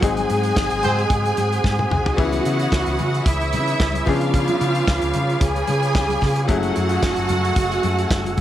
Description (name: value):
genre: disco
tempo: 111 BPM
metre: 4/4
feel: straight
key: C# minor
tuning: A4 = 438 Hz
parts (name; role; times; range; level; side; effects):
- clear studio string section; second line; 0.0-8.4 s; E4 to G#5; -22 LUFS; right 2 dB; slapback echo
- bright concert grand piano; accompaniment; 0.0-8.4 s; E3 to G#4; -25 LUFS; left 6 dB; none
- mellow tonewheel organ; sustained chords; 0.0-8.4 s; A3 to E6; -30 LUFS; right 2 dB; chorus vibrato, wide subtle chorus
- hollow-body short-scale fingered electric bass; bass; 0.0-8.4 s; F#1 to C#3; -24 LUFS; equal; none
- warm soul drum kit; drums; 0.0-8.4 s; crash cymbal, hi-hat, kick drum, snare drum, toms; -23 LUFS; equal; none
- congas; percussion; 0.0-8.4 s; none; -33 LUFS; left 5 dB; none
- warm horn section; stabs; 0.8-1.0 s; B#3 to B#4; -24 LUFS; right 1 dB; none
room: studio ambience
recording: none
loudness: -17 LUFS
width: side -12 dB against mid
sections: 0.0-8.4 A section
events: band accent 0.0-2.2; drum fill 1.6-2.2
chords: 0.0 G#7; 2.2 C#m9; 4.1 C#7b9; 6.5 F#m9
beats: | 0.03 0.57 1.10 1.64 | 2.18 2.72 3.26 3.80 | 4.34 4.88 5.41 5.95 | 6.49 7.03 7.57 8.11